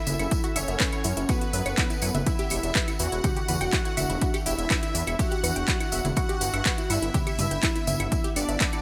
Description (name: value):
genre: melodic techno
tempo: 123 BPM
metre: 4/4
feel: straight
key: E dorian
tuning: A4 = 439 Hz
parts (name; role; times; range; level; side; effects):
- unison lead; melody; 0.0-8.8 s; B3 to F#4; -35 LUFS; equal; delay
- soft supersaw; second line; 0.0-8.8 s; B4 to F#5; -38 LUFS; equal; sidechain pumping, digital delay
- unison pluck; arpeggios; 0.0-8.8 s; E4 to G5; -37 LUFS; equal; cassette tape, sidechain pumping, digital delay
- ethereal airy pad; texture; 0.0-8.8 s; B3 to F#5; -41 LUFS; equal; ensemble chorus, built-in reverb, sidechain pumping
- dark detuned saw bass; bass; 0.1-8.6 s; E1 to G2; -32 LUFS; equal; sidechain pumping
- house drum kit; drums; 0.1-8.8 s; claves, congas, handclaps, hi-hat; -31 LUFS; equal; overdrive
- tambourine; percussion; 0.1-8.8 s; none; -39 LUFS; equal; none
- electronic kick drum; drums; 0.3-8.7 s; none; -30 LUFS; equal; overdrive
room: light reverb, digital ambience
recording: bright 1980s-style digital production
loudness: -26 LUFS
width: mono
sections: 0.0-8.8 A section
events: none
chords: 0.0 F#m; 2.3 Em7; 6.2 Gmaj7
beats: | 0.31 0.80 1.29 1.78 | 2.27 2.75 3.24 3.73 | 4.22 4.70 5.19 5.68 | 6.17 6.66 7.14 7.63 | 8.12 8.61